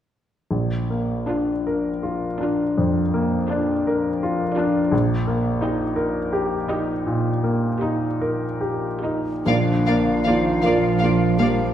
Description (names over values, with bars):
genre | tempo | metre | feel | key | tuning
classical, romantic movement for piano and orchestra | 44-58 BPM (dotted quarters) | 12/8 | rubato | Bb major | A4 = 440 Hz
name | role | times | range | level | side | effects
clear baby grand piano | melody | 0.5-11.7 s | Bb1 to Bb4 | -21 LUFS | left 1 dB | none
dark studio viola section | accompaniment | 1.3-11.5 s | Bb3 to G4 | -30 LUFS | right 2 dB | none
warm French horn section | sustained chords | 9.4-11.7 s | Bb3 to D4 | -29 LUFS | equal | none
dark studio violin section | melody | 9.5-11.5 s | F5 | -29 LUFS | left 4 dB | none
concert flute | second line | 9.5-11.7 s | F5 | -29 LUFS | left 1 dB | none
mellow clarinet | second line | 9.5-11.7 s | D4 to G4 | -26 LUFS | left 1 dB | none
warm studio violin section | second line | 9.5-11.5 s | D5 | -30 LUFS | equal | none
warm bassoon | accompaniment | 9.5-11.7 s | F3 | -28 LUFS | equal | none
mellow trombone section | sustained chords | 9.5-11.7 s | Bb2 to F3 | -28 LUFS | right 3 dB | none
warm studio cello section | bass | 9.5-11.7 s | D3 to G3 | -26 LUFS | right 5 dB | none
warm symphonic double bass section | bass | 9.5-11.6 s | Bb1 | -26 LUFS | right 4 dB | none
room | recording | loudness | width
moderate scoring stage reverb, RT60 1.9 s | heard from further back in the room | -19 LUFS | side -10 dB against mid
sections
0.5-9.5 A section; 9.5-11.7 B section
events
none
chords
0.5 Bb; 4.9 Eb/Bb; 9.5 Bb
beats
| 0.51 1.66 2.78 3.87 | 4.92 5.97 7.07 8.21 | 9.47 10.64